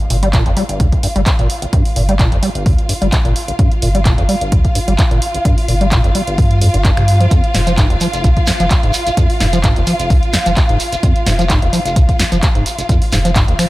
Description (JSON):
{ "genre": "acid house", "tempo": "129 BPM", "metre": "4/4", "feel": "swing 54% on 16ths", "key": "G phrygian", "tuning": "A4 = 440 Hz", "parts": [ { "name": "dark studio string section", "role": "sustained chords", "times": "0.0-13.7 s", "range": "F4 to F5", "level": "-21 LUFS", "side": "equal", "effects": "sidechain pumping" }, { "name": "punchy analog drum machine", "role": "drums", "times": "0.0-13.7 s", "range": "finger snaps, handclaps, hi-hat, snare drum", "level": "-21 LUFS", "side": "equal", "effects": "none" }, { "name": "liquid acid bass", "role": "riff", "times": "0.1-13.7 s", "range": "F1 to G3", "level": "-18 LUFS", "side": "equal", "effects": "chorus, dub echo" }, { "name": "warm sub bass", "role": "bass", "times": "0.1-13.6 s", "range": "F1 to G2", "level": "-16 LUFS", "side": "equal", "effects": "sidechain pumping" }, { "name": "electronic kick drum", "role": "drums", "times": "0.3-13.5 s", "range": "none", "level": "-14 LUFS", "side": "equal", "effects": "none" }, { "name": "shekere", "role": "percussion", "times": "7.3-13.7 s", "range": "none", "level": "-26 LUFS", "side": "right 2 dB", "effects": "dub echo" } ], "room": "light reverb", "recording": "echo-heavy mix", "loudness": "-11 LUFS", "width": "side -18 dB against mid", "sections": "0.0-13.7 A section", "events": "filter sweep on acid bass 0.0-13.7", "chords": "0.0 Gm7; 7.3 Fm", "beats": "0.34 0.80 1.26 | 1.73 2.20 2.66 3.13 | 3.59 4.06 4.52 4.99 | 5.45 5.92 6.38 6.85 | 7.31 7.78 8.24 8.71 | 9.17 9.64 10.10 10.57 | 11.03 11.50 11.96 12.43 | 12.89 13.36" }